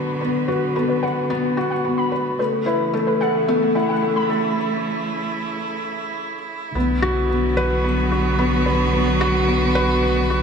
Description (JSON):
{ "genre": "piano and strings electronica", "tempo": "110 BPM", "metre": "4/4", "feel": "straight", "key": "B minor", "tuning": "A4 = 443 Hz", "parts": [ { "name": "warm string quartet", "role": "sustained chords", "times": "0.0-10.4 s", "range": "C#3 to F#4", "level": "-24 LUFS", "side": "right 2 dB", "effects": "stereo widening" }, { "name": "felt-muted upright piano", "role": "riff", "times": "0.0-10.4 s", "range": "A3 to B4", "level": "-21 LUFS", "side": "left 2 dB", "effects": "tape echo" }, { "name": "warbly dusty pluck", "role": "arpeggios", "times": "0.2-4.2 s", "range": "B3 to B5", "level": "-25 LUFS", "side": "left 2 dB", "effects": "ensemble chorus, tape echo" }, { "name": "warm sub bass", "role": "bass", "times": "6.8-10.4 s", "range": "B1", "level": "-23 LUFS", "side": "right 1 dB", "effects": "none" } ], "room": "wet scoring stage reverb, RT60 1.8 s, studio reverb", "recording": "high-pass filter", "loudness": "-18 LUFS", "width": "side -6 dB against mid", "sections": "0.0-6.8 A section; 6.8-10.4 B section", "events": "build-up 0.0-6.8; filter sweep 0.0-6.8; break 4.6-6.8; drop 6.8-10.4", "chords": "0.0 Bm; 2.4 A; 6.8 Bm" }